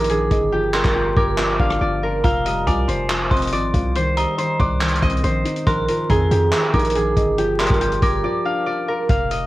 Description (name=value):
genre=hip hop, trap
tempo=140 BPM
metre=4/4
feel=half-time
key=unclear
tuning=A4 = 443 Hz
part: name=concert harp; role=melody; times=0.0-9.5 s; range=G4 to F5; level=-21 LUFS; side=right 1 dB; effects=cassette tape
part: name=dark detuned synth bell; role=second line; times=0.0-8.6 s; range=Ab5 to D6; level=-27 LUFS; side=right 1 dB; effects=chorus, cassette tape, tape echo
part: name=dark concert grand piano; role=accompaniment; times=0.0-9.1 s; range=Eb3 to Eb5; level=-26 LUFS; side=left 2 dB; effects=cassette tape
part: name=long sustained 808-style bass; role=bass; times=0.0-9.5 s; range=F1 to F2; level=-23 LUFS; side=equal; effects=none
part: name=vintage drum kit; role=drums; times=0.0-9.4 s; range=handclaps, hi-hat, kick drum, rim click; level=-22 LUFS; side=equal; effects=cassette tape
room=little or no reverb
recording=home recording on cassette, vinyl crackle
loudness=-16 LUFS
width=side -17 dB against mid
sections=0.0-9.1 A section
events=hi-hats muted 0.5-2.2; break 8.2-9.1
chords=0.0 Bbsus4; 0.5 G5; 2.2 Fmadd9; 4.0 Cm7; 5.7 Bbsus4; 7.4 G5